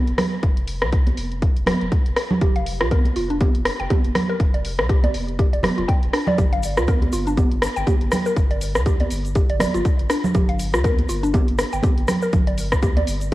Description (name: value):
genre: afro house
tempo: 121 BPM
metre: 4/4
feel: swing 57% on 16ths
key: G minor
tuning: A4 = 440 Hz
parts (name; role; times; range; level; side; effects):
- warm sub bass; bass; 0.1-13.3 s; F1 to D2; -26 LUFS; equal; sidechain pumping
- afro-pop drum kit; drums; 0.1-13.3 s; hi-hat, rim click; -26 LUFS; left 1 dB; cassette tape
- congas; percussion; 0.2-13.1 s; none; -25 LUFS; right 2 dB; none
- electronic kick drum; drums; 0.4-12.9 s; none; -19 LUFS; equal; overdrive, cassette tape
- mallet-like synth pluck; arpeggios; 2.4-13.0 s; D4 to G5; -26 LUFS; equal; chorus, phaser, sidechain pumping, cassette tape, tape echo
- tube shaker; percussion; 6.4-13.3 s; none; -38 LUFS; left 2 dB; none
room: light reverb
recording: home recording on cassette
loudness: -18 LUFS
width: side -17 dB against mid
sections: 0.0-13.3 A section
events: none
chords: 0.0 F5; 6.4 G5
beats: | 0.43 0.93 1.42 1.92 | 2.42 2.91 3.41 3.90 | 4.40 4.89 5.39 5.89 | 6.38 6.88 7.37 7.87 | 8.37 8.86 9.36 9.85 | 10.35 10.84 11.34 11.84 | 12.33 12.83 13.32